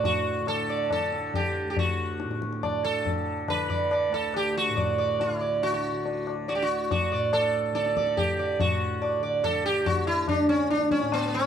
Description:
indian classical, Hindustani; 141 BPM; 4/4; straight; D raga bilaval; A4 = 441 Hz
sitar; melody; 0.0-11.5 s; B3 to D5; -25 LUFS; right 2 dB
tanpura; drone; 0.0-11.5 s; D2 to D3; -34 LUFS; right 2 dB
tabla; percussion; 0.0-11.3 s; -31 LUFS; left 5 dB
little or no reverb; dry, close 1970s-style studio recording; -24 LUFS; side -8 dB against mid
0.0-8.6 A section; 8.6-11.5 B section
| 0.04 0.47 0.90 1.33 | 1.76 2.20 2.63 3.06 | 3.48 3.91 4.34 4.77 | 5.20 5.62 6.05 6.48 | 6.90 7.33 7.75 8.18 | 8.60 9.03 9.45 9.87 | 10.29 10.71 11.13

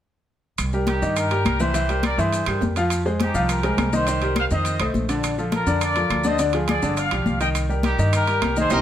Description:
latin, salsa; 207 BPM; 4/4; straight; C minor; A4 = 440 Hz
upright bass; bass; 0.6-8.8 s; G1 to G2; -25 LUFS; right 1 dB
claves; percussion; 0.6-8.8 s; -36 LUFS; right 6 dB
congas; percussion; 0.6-8.8 s; -27 LUFS; left 3 dB
maracas; percussion; 0.6-8.8 s; -36 LUFS; left 5 dB
timbales; percussion; 0.6-8.8 s; -31 LUFS; right 7 dB
clear baby grand piano; accompaniment; 0.7-8.8 s; D3 to F5; -24 LUFS; left 1 dB
clear trumpet section; melody; 0.9-8.8 s; Eb4 to G5; -25 LUFS; left 1 dB; plate reverb
moderate studio reverb, RT60 0.9 s; -19 LUFS; side -10 dB against mid
0.6-8.8 A section
0.6 Cm7; 1.7 C7; 2.9 Fm9; 4.1 Cm7; 4.7 F7; 5.2 Bbmaj7; 6.4 Ddim; 7.0 G7; 7.6 Cm7
| 0.58 0.88 1.17 1.46 | 1.75 2.04 2.33 2.62 | 2.91 3.20 3.49 3.78 | 4.07 4.36 4.65 4.94 | 5.23 5.52 5.82 6.11 | 6.39 6.68 6.97 7.26 | 7.55 7.84 8.13 8.42 | 8.71

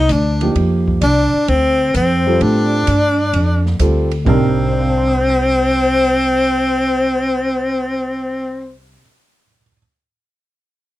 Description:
modal jazz; 130 BPM; 4/4; swing 69% on 8ths; C dorian; A4 = 440 Hz
breathy tenor saxophone; melody; 0.0-8.7 s; C4 to Eb4; -16 LUFS; equal
mellow alto saxophone; second line; 0.0-8.7 s; C5 to Eb5; -22 LUFS; left 5 dB
upright bass; bass; 0.0-9.0 s; C2 to A2; -18 LUFS; equal
open jazz drum kit; drums; 0.1-4.4 s; hi-hat, kick drum, ride cymbal, snare drum, toms; -23 LUFS; right 2 dB
warm grand piano; accompaniment; 0.4-9.8 s; C3 to D7; -20 LUFS; right 2 dB
light reverb; close, detailed microphones; -13 LUFS; side -15 dB against mid
0.0-4.3 A section; 4.3-8.0 B section
0.0 Dm7
0.09 | 0.56 1.02 1.48 1.94 | 2.40 2.87 3.33 3.79 | 4.26 4.72 5.18 5.65 | 6.11 6.57 7.04 7.50

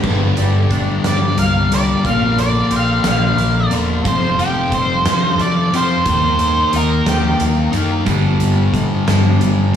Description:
quiet-loud alternative rock; 60 BPM (dotted quarters); 6/8; straight; G minor; A4 = 438 Hz
twangy electric guitar; arpeggios; 0.0-8.1 s; G2 to Eb4; -24 LUFS; right 4 dB; ensemble chorus
thick fuzz guitar; riff; 0.0-9.8 s; F2 to Eb4; -18 LUFS; left 5 dB; distortion
fingered electric bass; bass; 0.0-9.8 s; E1 to G2; -20 LUFS; equal
oversized low-tuned drum kit; drums; 0.0-9.6 s; crash cymbal, hi-hat, kick drum, snare drum; -21 LUFS; right 1 dB
octave-fuzz lead guitar; melody; 1.1-7.4 s; G4 to F5; -18 LUFS; right 2 dB; distortion, tape echo
overdriven semi-hollow guitar; riff; 8.1-9.8 s; G2 to G3; -19 LUFS; right 10 dB
studio reverb; small room ambience; -13 LUFS; side -9 dB against mid
0.0-9.8 A section
lead electric guitar solo 0.0-9.8
0.0 Gm; 2.0 Bbadd9; 4.1 F; 6.1 Eb5; 8.1 G5
| 0.05 1.05 | 2.05 3.05 | 4.05 5.05 | 6.06 7.06 | 8.07 9.07

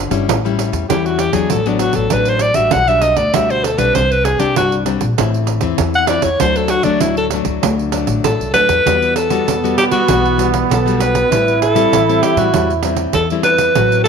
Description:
samba and choro; 98 BPM; 4/4; straight; E minor from 8.9 s; A4 = 440 Hz
nylon-string guitar; accompaniment; 0.0-14.1 s; G2 to F#4; -20 LUFS; left 10 dB
upright bass; bass; 0.0-14.1 s; G1 to E3; -21 LUFS; equal
pandeiro; percussion; 0.1-14.1 s; -20 LUFS; right 11 dB
breathy alto saxophone; melody; 0.9-14.1 s; D4 to F#5; -15 LUFS; equal; slapback echo
warm trombone; second line; 8.9-14.1 s; B3 to F#4; -18 LUFS; right 8 dB
moderate echo chamber reverb, RT60 1.6 s, small room ambience; 1960s-style stereo with parts hard left and right; -12 LUFS; side -6 dB against mid
0.0-8.9 A section; 8.9-14.1 B section
alto saxophone solo 0.0-8.9
0.3 A7; 1.5 D6/A; 2.7 Gmaj7/B; 4.0 Csus2; 5.2 Am; 6.4 D; 8.9 Emadd9; 11.3 Am7
0.28 0.89 | 1.51 2.12 2.73 3.35 | 3.96 4.57 5.18 5.80 | 6.41 7.02 7.63 8.25 | 8.86 9.47 10.08 10.70 | 11.31 11.92 12.53 13.14 | 13.76

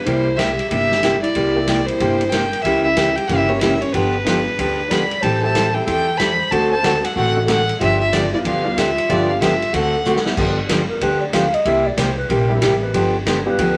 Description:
country, western swing; 186 BPM; 4/4; swing 64% on 8ths; G mixolydian; A4 = 440 Hz
rich fiddle; melody; 0.0-10.3 s; B4 to B5; -23 LUFS; equal
breathy clarinet; second line; 0.0-13.8 s; C#4 to F5; -26 LUFS; equal
warm upright piano; accompaniment; 0.0-13.6 s; G3 to G4; -28 LUFS; equal
picked steel-string acoustic guitar; accompaniment; 0.1-13.8 s; C3 to A4; -22 LUFS; equal
upright bass; bass; 0.1-13.8 s; G1 to E2; -28 LUFS; equal
swinging big-band drum kit; drums; 0.1-13.7 s; crash cymbal, hi-hat, kick drum, ride cymbal, snare drum; -27 LUFS; equal
wet studio ambience, RT60 0.5 s; -18 LUFS; mono
0.0-10.4 A section; 10.4-13.8 B section
drum fill 10.1-10.4; clarinet solo 10.4-13.8
0.1 C7; 2.6 C#dim7; 3.9 G7; 5.2 Am7; 6.5 D7; 7.8 G7; 9.7 D7; 10.4 G7; 11.7 C7; 12.9 G7
| 0.06 0.39 0.71 1.03 | 1.35 1.68 2.00 2.32 | 2.65 2.97 3.29 3.62 | 3.94 4.26 4.58 4.90 | 5.23 5.55 5.87 6.19 | 6.51 6.83 7.16 7.48 | 7.80 8.12 8.44 8.77 | 9.09 9.41 9.73 10.05 | 10.37 10.69 11.02 11.34 | 11.66 11.98 12.30 12.62 | 12.94 13.26 13.59

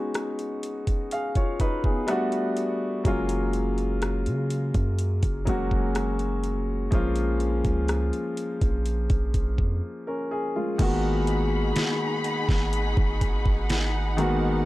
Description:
contemporary R&B; 62 BPM; 4/4; straight; G# dorian; A4 = 439 Hz
dark baby grand piano; accompaniment; 0.0-14.7 s; D#3 to E#5; -27 LUFS; left 1 dB
smooth R&B drum kit; drums; 0.1-14.4 s; crash cymbal, hi-hat, kick drum, rim click, snare drum; -26 LUFS; equal
long sustained 808-style bass; bass; 3.1-14.6 s; F#1 to C#3; -27 LUFS; equal
dark studio string section; sustained chords; 10.8-14.7 s; D#4 to B5; -31 LUFS; left 1 dB; sidechain pumping
studio reverb; dry, gritty hardware recording, cassette tape; -23 LUFS; side -17 dB against mid
0.0-10.8 A section; 10.8-14.7 B section
break 9.8-10.8
0.0 C#9sus4; 2.1 Gmaj9; 3.1 F#maj9; 6.9 A#m7; 10.8 G#m7
0.15 1.12 2.08 | 3.05 4.02 4.99 5.96 | 6.92 7.89 8.86 9.83 | 10.79 11.76 12.73 13.70

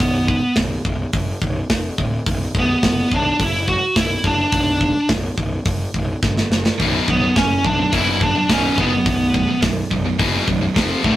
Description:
heavy metal; 106 BPM; 4/4; straight; B minor; A4 = 440 Hz
high-gain lead guitar; melody; 0.0-11.2 s; A3 to F#4; -18 LUFS; equal; distortion
fuzz picked electric bass; bass; 0.0-11.2 s; B0 to G1; -23 LUFS; equal; overdrive
tight metal drum kit; drums; 0.0-11.2 s; hi-hat, kick drum, snare drum; -21 LUFS; equal
distorted electric guitar; riff; 6.8-11.2 s; B1 to F3; -23 LUFS; left 5 dB; overdrive
high-gain distorted guitar; riff; 6.8-11.2 s; B1 to F3; -24 LUFS; right 4 dB; distortion
light reverb; rough rehearsal-room recording; -16 LUFS; side -14 dB against mid
0.0-11.2 A section
drum fill 6.2-6.8
0.0 B5; 1.7 N.C.; 2.3 Bm; 6.2 N.C.; 6.8 B5; 10.8 F5
| 0.01 0.58 1.15 1.71 | 2.28 2.84 3.41 3.98 | 4.54 5.11 5.67 6.24 | 6.80 7.37 7.93 8.50 | 9.07 9.63 10.20 10.76

